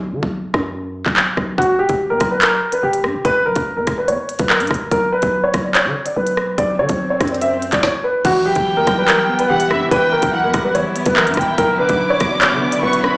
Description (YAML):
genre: hip hop, drill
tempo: 144 BPM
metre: 4/4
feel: half-time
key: unclear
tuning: A4 = 441 Hz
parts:
  - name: growling 808-style bass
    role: bass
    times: 0.0-13.2 s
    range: E1 to D3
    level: -24 LUFS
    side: equal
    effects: none
  - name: drill drum kit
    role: drums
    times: 0.2-13.1 s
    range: crash cymbal, handclaps, hi-hat, kick drum, rim click, snare drum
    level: -18 LUFS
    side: equal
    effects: none
  - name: dark concert grand piano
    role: melody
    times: 1.6-13.2 s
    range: F#4 to E5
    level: -17 LUFS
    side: equal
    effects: slapback echo
  - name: swell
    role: sound effects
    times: 6.0-7.8 s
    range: none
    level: -28 LUFS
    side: equal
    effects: none
  - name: mellow electric guitar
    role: accompaniment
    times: 8.2-13.2 s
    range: B2 to E4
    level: -23 LUFS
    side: equal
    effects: none
  - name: dark symphonic string section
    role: sustained chords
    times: 8.2-13.2 s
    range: D3 to E4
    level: -25 LUFS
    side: equal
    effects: none
  - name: dark studio violin section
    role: second line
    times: 8.5-13.2 s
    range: E5 to D6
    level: -20 LUFS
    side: equal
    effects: slapback echo
room: light reverb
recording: played on a big sound system in a bare room, large studio reverb, small speaker sound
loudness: -14 LUFS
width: side -24 dB against mid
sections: 0.0-8.2 A section; 8.2-13.2 B section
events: break 0.0-1.6; swell 6.0-8.2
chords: 0.0 B5; 1.6 Em; 4.9 B5; 8.2 Emadd9; 11.6 Bmadd9